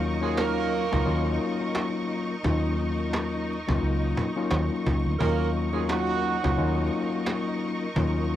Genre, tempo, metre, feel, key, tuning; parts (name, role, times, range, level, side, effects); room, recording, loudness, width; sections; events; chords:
hip hop, boom-bap hip-hop; 87 BPM; 4/4; swing 56% on 16ths; Eb minor; A4 = 440 Hz
mellow tine electric piano; accompaniment; 0.0-8.4 s; Gb3 to F4; -28 LUFS; left 4 dB; medium stereo tremolo, cassette tape
rich studio string section; sustained chords; 0.0-8.4 s; Eb4 to Db6; -33 LUFS; right 1 dB
deep dub fingered electric bass; bass; 0.0-8.4 s; Db2 to Eb2; -28 LUFS; right 1 dB
cajon; drums; 0.0-8.4 s; -30 LUFS; right 1 dB; cassette tape
warm horn section; stabs; 0.2-6.9 s; Gb3 to Bb4; -30 LUFS; right 9 dB; analog delay
studio ambience; home recording on cassette, vinyl crackle; -24 LUFS; side -12 dB against mid
0.0-8.4 A section
0.0 Ebm7